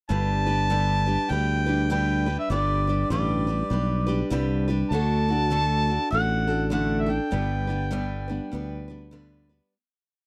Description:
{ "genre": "honky-tonk and classic country", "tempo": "100 BPM", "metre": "4/4", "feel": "swing 61% on 8ths", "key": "G major", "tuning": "A4 = 440 Hz", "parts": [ { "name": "mellow harmonica", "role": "melody", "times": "0.1-8.9 s", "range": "D5 to A5", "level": "-30 LUFS", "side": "equal", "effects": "none" }, { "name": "picked steel-string acoustic guitar", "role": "accompaniment", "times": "0.1-9.7 s", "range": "G2 to B4", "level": "-30 LUFS", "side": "equal", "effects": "none" }, { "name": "fingered electric bass", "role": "bass", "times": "0.1-9.6 s", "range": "G1 to D2", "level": "-28 LUFS", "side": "equal", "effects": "none" } ], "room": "light reverb", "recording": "dry, close 1970s-style studio recording", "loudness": "-25 LUFS", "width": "mono", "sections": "0.1-9.7 A section", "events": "fade-out 7.3-9.7", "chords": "0.1 G; 4.9 D; 7.3 G", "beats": "| 0.10 0.70 1.30 1.90 | 2.50 3.10 3.70 4.31 | 4.91 5.51 6.11 6.72 | 7.32 7.92 8.53 9.13" }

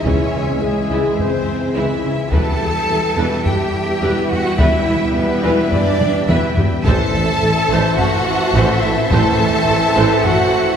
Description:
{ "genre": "cinematic, epic orchestral film score", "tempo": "106 BPM", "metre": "4/4", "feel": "straight", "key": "unclear", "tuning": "A4 = 439 Hz", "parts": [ { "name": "rich studio violin section", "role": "melody", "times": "0.0-10.8 s", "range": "G#4 to A5", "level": "-27 LUFS", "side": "left 4 dB", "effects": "none" }, { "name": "clear symphonic violin section", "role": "second line", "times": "0.0-10.8 s", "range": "E5 to A5", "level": "-28 LUFS", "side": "left 3 dB", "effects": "none" }, { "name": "mellow hollow silver concert flute", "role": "second line", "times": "0.0-10.8 s", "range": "G#4 to A5", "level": "-23 LUFS", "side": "equal", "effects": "none" }, { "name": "clear trombone section", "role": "sustained chords", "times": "0.0-10.8 s", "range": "E3 to A3", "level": "-25 LUFS", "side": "right 4 dB", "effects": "none" }, { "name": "mellow French horn section", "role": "sustained chords", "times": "0.0-10.8 s", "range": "C#3 to G#4", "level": "-26 LUFS", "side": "left 3 dB", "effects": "none" }, { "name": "rich symphonic string section", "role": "sustained chords", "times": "0.0-10.8 s", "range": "E4 to E5", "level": "-26 LUFS", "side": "left 1 dB", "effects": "none" }, { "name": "clear symphonic double bass section", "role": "bass", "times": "0.0-10.3 s", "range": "A1 to E2", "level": "-23 LUFS", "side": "right 1 dB", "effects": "none" }, { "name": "rich symphonic cello section", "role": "bass", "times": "0.0-10.8 s", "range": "G#3 to A4", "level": "-21 LUFS", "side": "right 2 dB", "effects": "none" }, { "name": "rich symphonic viola section", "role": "accompaniment", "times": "0.1-10.3 s", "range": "E3 to C5", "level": "-24 LUFS", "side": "equal", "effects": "none" }, { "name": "mellow tuba", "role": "bass", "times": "0.1-10.4 s", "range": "E1 to C#2", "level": "-24 LUFS", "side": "right 1 dB", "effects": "none" }, { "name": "taiko ensemble", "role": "drums", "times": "0.1-10.8 s", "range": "none", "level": "-21 LUFS", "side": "left 1 dB", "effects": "none" } ], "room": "wet church reverb, RT60 2.8 s", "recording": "recorded in a church or concert hall", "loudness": "-14 LUFS", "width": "side -8 dB against mid", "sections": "0.0-10.8 A section", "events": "drum fill 6.0-6.9", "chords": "0.0 C#m; 2.3 Em; 6.9 Am", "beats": "| 0.06 0.62 1.19 1.76 | 2.32 2.89 3.46 4.02 | 4.59 5.16 5.72 6.29 | 6.85 7.42 7.98 8.55 | 9.11 9.68 10.24" }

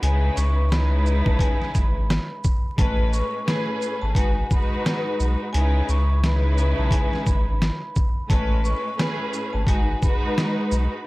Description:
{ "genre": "hip hop, boom-bap hip-hop", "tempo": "87 BPM", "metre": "4/4", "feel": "swing 59% on 16ths", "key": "C# minor", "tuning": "A4 = 440 Hz", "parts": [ { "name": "vibraphone with medium hard mallets", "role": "melody", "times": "0.0-11.0 s", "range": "G#5 to C#6", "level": "-32 LUFS", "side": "equal", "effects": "high-pass filter, low-pass filter" }, { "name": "warm symphonic string section", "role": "accompaniment", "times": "0.0-11.0 s", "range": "G#2 to B4", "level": "-26 LUFS", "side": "equal", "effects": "cassette tape, high-pass filter, low-pass filter" }, { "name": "warm sub bass", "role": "bass", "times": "0.0-10.9 s", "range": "G#1 to C#2", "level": "-21 LUFS", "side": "equal", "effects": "transformer saturation" }, { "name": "trip hop sampler-style drum kit", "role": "drums", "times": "0.0-10.9 s", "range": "hi-hat, kick drum, shaker, snare drum", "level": "-22 LUFS", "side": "equal", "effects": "overdrive" } ], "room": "little or no reverb", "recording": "dry, gritty hardware recording, vinyl crackle", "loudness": "-20 LUFS", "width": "side -20 dB against mid", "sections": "0.0-11.1 A section", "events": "none", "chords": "0.0 C#m9; 2.8 Amaj9; 4.2 G#m7; 5.5 C#m9; 8.3 Amaj9; 9.7 G#m7", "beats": "| 0.02 0.71 1.40 2.09 | 2.78 3.47 4.16 4.85 | 5.54 6.23 6.92 7.61 | 8.30 8.99 9.68 10.37" }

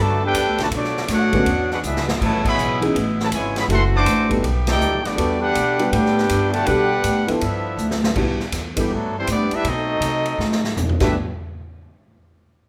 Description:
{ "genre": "jazz, big band swing", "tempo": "161 BPM", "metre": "4/4", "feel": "swing 64% on 8ths", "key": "E minor", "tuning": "A4 = 441 Hz", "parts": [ { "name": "warm trumpet section", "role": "melody", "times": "0.0-11.1 s", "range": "F#3 to D6", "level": "-25 LUFS", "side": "equal", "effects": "none" }, { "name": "warm trombone section", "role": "second line", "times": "0.0-11.1 s", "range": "B2 to G4", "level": "-27 LUFS", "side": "equal", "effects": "none" }, { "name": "bright saxophone section", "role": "sustained chords", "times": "0.0-8.2 s", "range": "B2 to A4", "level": "-32 LUFS", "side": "equal", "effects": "none" }, { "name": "upright bass", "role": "bass", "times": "0.0-11.1 s", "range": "F#1 to C3", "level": "-25 LUFS", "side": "equal", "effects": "none" }, { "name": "swinging big-band drum kit", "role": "drums", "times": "0.3-11.1 s", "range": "crash cymbal, hi-hat, kick drum, ride cymbal, snare drum, toms", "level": "-28 LUFS", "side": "equal", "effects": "none" }, { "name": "dark baby grand piano", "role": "accompaniment", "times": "1.3-11.1 s", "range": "D3 to B4", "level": "-26 LUFS", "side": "equal", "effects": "none" } ], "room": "moderate large studio reverb, RT60 0.8 s", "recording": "band playing live in one room", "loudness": "-20 LUFS", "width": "mono", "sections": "0.0-8.2 A section; 8.2-11.1 B section; 11.1-12.6 C section", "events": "drum fill 1.8-2.2, 7.8-8.2, 10.4-11.1; band accent 2.4, 4.6", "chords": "0.0 Gmaj9; 0.7 Bm9; 1.5 E13; 2.2 Amaj9; 3.7 F#m7b5; 4.4 B7alt; 5.2 Em11; 7.4 G13; 8.2 Cmaj9#11; 9.7 B7b9; 11.0 Em11; 11.1 N.C.", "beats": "0.35 | 0.72 1.10 1.47 1.84 | 2.21 2.58 2.96 3.33 | 3.70 4.08 4.45 4.82 | 5.19 5.57 5.94 6.31 | 6.68 7.05 7.42 7.80 | 8.17 8.54 8.91 9.28 | 9.65 10.02 10.39 10.77 | 11.14" }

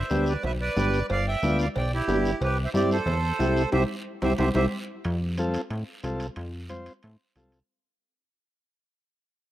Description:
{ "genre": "latin, cumbia", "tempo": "182 BPM", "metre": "4/4", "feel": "straight", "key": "unclear", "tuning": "A4 = 439 Hz", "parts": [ { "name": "accordion", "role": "melody", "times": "0.0-4.7 s", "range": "E4 to G5", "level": "-28 LUFS", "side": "right 3 dB", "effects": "slapback echo" }, { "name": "plucky analog bass", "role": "bass", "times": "0.0-7.6 s", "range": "G1 to A2", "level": "-28 LUFS", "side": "equal", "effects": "none" }, { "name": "combo organ", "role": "accompaniment", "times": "0.1-7.6 s", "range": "B3 to C5", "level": "-29 LUFS", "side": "left 1 dB", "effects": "none" }, { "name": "congas", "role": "percussion", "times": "0.1-7.5 s", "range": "none", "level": "-34 LUFS", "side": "equal", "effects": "none" }, { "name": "guiro", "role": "percussion", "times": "0.1-7.7 s", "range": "none", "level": "-44 LUFS", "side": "right 1 dB", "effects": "none" }, { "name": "cowbell and timbales", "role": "percussion", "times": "0.4-7.7 s", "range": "none", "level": "-36 LUFS", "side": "right 3 dB", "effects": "none" } ], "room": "light reverb", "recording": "rough home demo mix", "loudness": "-23 LUFS", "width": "side -14 dB against mid", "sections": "0.0-5.0 A section; 5.0-7.7 B section", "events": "band accent 3.7-5.0; drum fill 4.4-5.0; transistor combo organ fill 4.6-5.0; fade-out 5.0-7.7", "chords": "0.0 G; 2.4 C; 5.0 F", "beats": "0.10 0.43 0.76 | 1.09 1.42 1.75 2.08 | 2.41 2.74 3.07 3.40 | 3.73 4.06 4.39 4.72 | 5.05 5.38 5.71 6.04 | 6.37 6.70 7.03 7.36" }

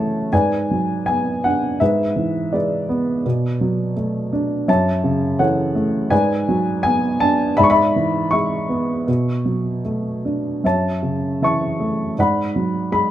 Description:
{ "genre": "classical, lyrical solo piano", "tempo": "76-84 BPM", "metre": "4/4", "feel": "rubato", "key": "unclear", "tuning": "A4 = 438 Hz", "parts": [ { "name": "dark upright piano", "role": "solo", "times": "0.0-13.1 s", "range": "F#2 to C#6", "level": "-17 LUFS", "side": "equal", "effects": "none" } ], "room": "light reverb", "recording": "close, detailed microphones", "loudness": "-17 LUFS", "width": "side -12 dB against mid", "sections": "0.0-13.1 A section", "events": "none", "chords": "0.3 G#m7b5; 1.8 E7/G#; 3.2 Bm7; 4.7 F#m7; 6.1 G#m7b5; 7.6 E7/G#; 9.1 Bm11; 10.6 F#m7; 12.2 G#m7b5", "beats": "0.32 1.07 | 1.80 2.53 3.25 3.96 | 4.68 5.40 6.11 6.84 | 7.58 8.33 9.08 9.85 | 10.64 11.42 12.18 12.92" }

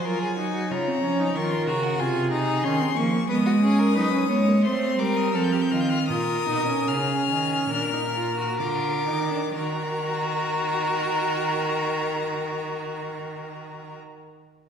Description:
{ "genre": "classical, baroque-style fugue for string quartet", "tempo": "60-94 BPM", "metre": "4/4", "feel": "straight", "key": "Eb minor from 3.3 s", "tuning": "A4 = 440 Hz", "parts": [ { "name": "clear violin", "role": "melody", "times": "0.0-14.0 s", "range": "F#5 to G6", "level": "-30 LUFS", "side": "left 5 dB", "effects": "none" }, { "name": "rich violin", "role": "second line", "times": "0.0-14.0 s", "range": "F4 to C#5", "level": "-28 LUFS", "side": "left 2 dB", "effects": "none" }, { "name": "rich viola", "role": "accompaniment", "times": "0.0-14.0 s", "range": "A#3 to Gb4", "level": "-27 LUFS", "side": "right 1 dB", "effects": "none" }, { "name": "clear cello", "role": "bass", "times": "0.0-14.0 s", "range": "Bb2 to A3", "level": "-27 LUFS", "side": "right 2 dB", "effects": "none" } ], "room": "wet concert hall reverb, RT60 1.8 s", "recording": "heard from further back in the room", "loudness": "-22 LUFS", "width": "side -7 dB against mid", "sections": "0.0-9.6 A section; 9.6-13.5 B section", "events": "slowing down 2.0-9.6", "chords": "0.0 Cdim (rootless); 0.7 A#m/C#; 2.0 G#/B#; 3.3 Abm; 4.6 F7; 6.1 Bb7sus4; 7.7 Bb; 9.6 Ebm", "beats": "0.06 | 0.70 1.35 1.99 2.64 | 3.29 3.96 4.64 5.35 | 6.10 6.88 7.71 8.60 | 9.56 10.56 11.54 12.53" }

